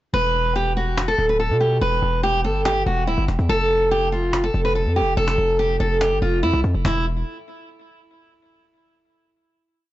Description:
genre	hip hop, trap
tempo	143 BPM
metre	4/4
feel	half-time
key	unclear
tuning	A4 = 440 Hz
part	picked steel-string acoustic guitar	melody	0.1-7.0 s	E4 to B4	-20 LUFS	right 1 dB	low-pass filter, tape echo
part	hard-hitting 808-style bass	bass	0.1-7.2 s	D1 to B2	-22 LUFS	equal	none
part	cajon	drums	0.1-6.9 s	none	-28 LUFS	equal	none
room	small room reverb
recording	blown-out, overdriven recording, overdrive, nothing above 7.8 kHz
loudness	-18 LUFS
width	side -15 dB against mid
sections	0.1-6.8 hook; 6.8-8.5 final chord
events	none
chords	0.1 Em; 3.5 F; 6.8 N.C.

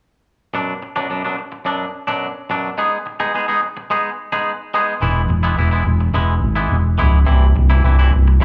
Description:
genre	rock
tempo	107 BPM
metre	4/4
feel	straight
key	unclear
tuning	A4 = 440 Hz
part	twangy electric guitar	arpeggios	0.5-8.4 s	F#2 to G#4	-22 LUFS	equal	slapback echo
part	overdriven fingered electric bass	bass	5.0-8.4 s	C1 to G#1	-16 LUFS	equal	none
room	digital ambience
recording	live gig heard through the venue's PA, club ambience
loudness	-18 LUFS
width	mono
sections	0.5-8.4 A section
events	none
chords	0.5 Bm; 2.8 G#m; 5.0 E; 7.3 C

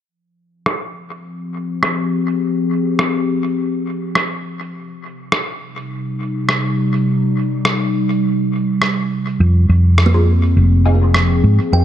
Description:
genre	ambient dub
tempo	103 BPM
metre	4/4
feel	swing 55% on 16ths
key	unclear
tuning	A4 = 440 Hz
part	warbly tape-like pad	sustained chords	1.3-11.8 s	C3 to Ab4	-19 LUFS	left 1 dB	chorus, built-in reverb
part	electronic rim click	drums	0.7-11.3 s	none	-19 LUFS	right 1 dB	low-pass filter on snare, low-pass filter on room, dub echo
part	hollow-body short-scale fingered electric bass	bass	9.4-11.8 s	F1 to Ab2	-11 LUFS	equal	none
part	kalimba	arpeggios	10.1-11.8 s	Bb3 to G5	-24 LUFS	right 4 dB	dub echo
part	filtered dub chord stab	stabs	10.1-11.0 s	C4 to Ab4	-24 LUFS	equal	phaser, ensemble chorus, dub echo
room	moderate echo chamber reverb, RT60 2.1 s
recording	nothing above 10.7 kHz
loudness	-14 LUFS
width	side -10 dB against mid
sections	0.1-11.8 A section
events	filter sweep on ambient pad 0.1-11.8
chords	0.1 Fm; 4.7 Cm; 9.4 Fm7

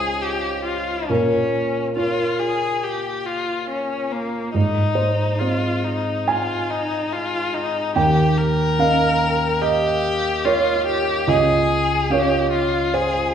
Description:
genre	neoclassical piano and strings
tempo	71 BPM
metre	4/4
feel	rubato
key	Ab major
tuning	A4 = 440 Hz
part	rich violin	melody	0.0-13.3 s	Bb3 to Bb4	-22 LUFS	left 3 dB	none
part	felt-muted upright piano	accompaniment	0.0-13.3 s	Db2 to Ab5	-20 LUFS	right 2 dB	none
room	wet recital hall reverb, RT60 1.4 s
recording	recorded in a church or concert hall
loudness	-18 LUFS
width	side -8 dB against mid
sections	0.0-13.3 A section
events	none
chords	0.0 Dbmaj7; 1.1 Bbm; 4.5 Ab; 8.0 Eb7; 11.3 Dbmaj7

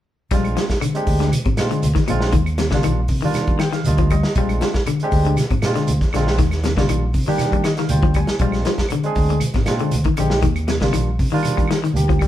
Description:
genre	afrobeat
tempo	118 BPM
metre	4/4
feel	straight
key	Bb mixolydian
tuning	A4 = 443 Hz
part	barky tine electric piano	accompaniment	0.3-12.2 s	G3 to Ab5	-25 LUFS	right 2 dB	overdrive
part	semi-hollow electric guitar	arpeggios	0.3-12.3 s	Bb2 to G3	-23 LUFS	left 6 dB	none
part	fingered electric bass	bass	0.3-12.3 s	Ab1 to Eb3	-21 LUFS	equal	none
part	vintage drum kit	drums	0.3-12.3 s	hi-hat, kick drum, snare drum	-21 LUFS	equal	none
part	shekere	percussion	0.3-12.3 s	none	-28 LUFS	right 2 dB	none
part	claves	percussion	0.4-12.3 s	none	-36 LUFS	right 4 dB	none
room	moderate large studio reverb, RT60 0.9 s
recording	band playing live in one room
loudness	-16 LUFS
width	side -12 dB against mid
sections	0.3-12.3 A section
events	tine electric piano fill 3.3-4.4, 7.4-8.4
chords	0.3 Bb7; 2.3 Ebmaj7; 4.4 Bb7; 6.4 Ebmaj7; 8.4 Bb7; 10.4 Ebmaj7

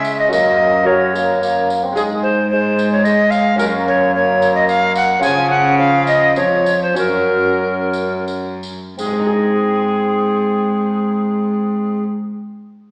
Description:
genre	classical, renaissance-style consort dance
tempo	82-111 BPM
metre	3/4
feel	straight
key	Ab mixolydian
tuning	A4 = 442 Hz
part	bright tenor recorder	melody	0.0-12.0 s	Ab4 to Ab5	-18 LUFS	equal	none
part	dark bassoon	accompaniment	0.0-12.0 s	F3 to C4	-23 LUFS	equal	none
part	lute	accompaniment	0.0-12.4 s	F2 to Eb5	-26 LUFS	equal	none
part	rich cello	bass	0.0-12.0 s	F2 to Db3	-23 LUFS	equal	none
part	tambourine	percussion	0.0-9.3 s	none	-37 LUFS	equal	none
room	wet recital hall reverb, RT60 1.5 s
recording	heard from further back in the room, small speaker sound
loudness	-16 LUFS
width	mono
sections	0.0-9.0 A section; 9.0-12.9 B section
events	slowing down 4.4-9.0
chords	0.3 Gb; 2.0 Ab5; 3.6 Gb; 5.2 Db; 7.0 Gb; 9.0 Ab

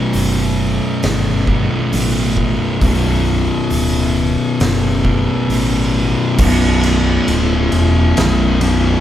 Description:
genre	stoner and doom metal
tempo	67 BPM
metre	4/4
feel	straight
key	unclear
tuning	A4 = 440 Hz
part	thick fuzz guitar	riff	0.0-9.0 s	B1 to B2	-16 LUFS	left 3 dB	distortion
part	thick fuzz guitar	riff	0.0-9.0 s	B1 to B2	-21 LUFS	right 4 dB	distortion
part	fingered electric bass	bass	0.1-8.9 s	B0 to A1	-18 LUFS	equal	overdrive
part	oversized low-tuned drum kit	drums	0.1-8.8 s	crash cymbal, hi-hat, kick drum, ride cymbal, snare drum	-21 LUFS	equal	none
room	moderate large studio reverb, RT60 1.2 s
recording	band playing live in one room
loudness	-13 LUFS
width	side -11 dB against mid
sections	0.0-6.4 A section; 6.4-9.0 B section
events	none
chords	0.0 B5; 6.4 Bm

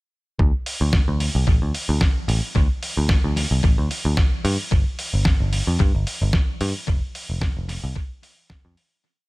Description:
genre	nu-disco, nu disco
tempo	111 BPM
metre	4/4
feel	swing 54% on 16ths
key	D minor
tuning	A4 = 439 Hz
part	picked electric bass	bass	0.4-8.7 s	F1 to G2	-21 LUFS	equal	none
part	electronic kick drum	drums	0.4-8.6 s	none	-19 LUFS	equal	none
part	dusty soul sampler-style drum kit	drums	0.7-8.9 s	hi-hat, snare drum	-27 LUFS	equal	analog delay
room	little or no reverb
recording	echo-heavy mix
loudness	-19 LUFS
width	side -22 dB against mid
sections	0.4-9.0 groove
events	fade-out 6.2-9.0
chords	none

